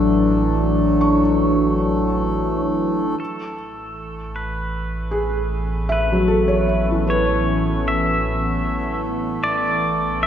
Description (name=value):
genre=ambient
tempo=77 BPM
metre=4/4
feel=straight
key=A major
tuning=A4 = 440 Hz
part: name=warbly tape-like pad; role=sustained chords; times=0.0-10.3 s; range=A2 to D4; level=-21 LUFS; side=left 1 dB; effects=chorus, built-in reverb, phaser
part: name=felt-muted upright piano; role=arpeggios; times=0.0-9.6 s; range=E3 to C#6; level=-23 LUFS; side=equal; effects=diffuse ambient delay
part: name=round analog bass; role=bass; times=0.0-10.3 s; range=A1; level=-25 LUFS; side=right 1 dB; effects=none
part: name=hand-pumped harmonium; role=drone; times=0.0-10.3 s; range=A3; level=-29 LUFS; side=equal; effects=none
part: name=pedal steel guitar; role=melody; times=3.2-10.3 s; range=A4 to E5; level=-25 LUFS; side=equal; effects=diffuse ambient delay
room=wet concert hall reverb, RT60 2.1 s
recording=none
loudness=-17 LUFS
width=side -9 dB against mid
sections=0.0-3.2 A section; 3.2-10.3 B section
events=fade-in on ambient pad 3.2-10.3; fade-in on harmonium 3.2-10.3; fade-in on pedal steel guitar 3.2-10.3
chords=0.0 Dadd9/A; 3.2 Aadd9; 9.4 Dsus2/A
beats=| 0.08 0.86 1.64 2.42 | 3.19 3.98 4.75 5.53 | 6.31 7.09 7.87 8.65 | 9.43 10.21